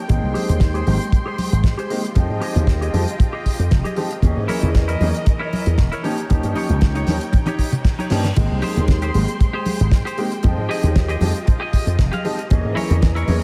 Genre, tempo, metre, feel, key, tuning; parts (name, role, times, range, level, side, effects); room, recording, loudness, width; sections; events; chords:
nu-disco, nu disco; 116 BPM; 4/4; swing 54% on 16ths; Ab major; A4 = 440 Hz
dark chamber string section; sustained chords; 0.0-13.4 s; Fb3 to C6; -32 LUFS; equal; sidechain pumping
warm grand piano; accompaniment; 0.1-13.4 s; Fb3 to G5; -29 LUFS; equal; analog chorus, sidechain pumping, delay
slap bass with an envelope filter; bass; 0.1-13.4 s; Fb1 to Ab2; -22 LUFS; equal; tube saturation
damped 70s drum kit; drums; 0.1-13.4 s; crash cymbal, hi-hat, snare drum, toms; -31 LUFS; equal
kick drum; drums; 0.1-13.1 s; -19 LUFS; equal
congas; percussion; 0.1-13.4 s; -30 LUFS; equal
semi-hollow electric guitar; riff; 0.3-13.4 s; Eb4 to F5; -31 LUFS; equal; subtle chorus, low-pass filter, delay
reverse cymbal; sound effects; 7.8-8.4 s; -43 LUFS; equal
light reverb; -19 LUFS; mono
0.0-13.4 A section
filter sweep on clean electric guitar 0.0-13.4; drum fill 7.3-8.4; reverse cymbal 7.8-8.4
0.1 Abmaj7; 2.2 Fm9; 4.2 Dbm6/Fb; 6.0 Eb7; 8.4 Abmaj7; 10.4 Fm9; 12.5 Dbm6/Fb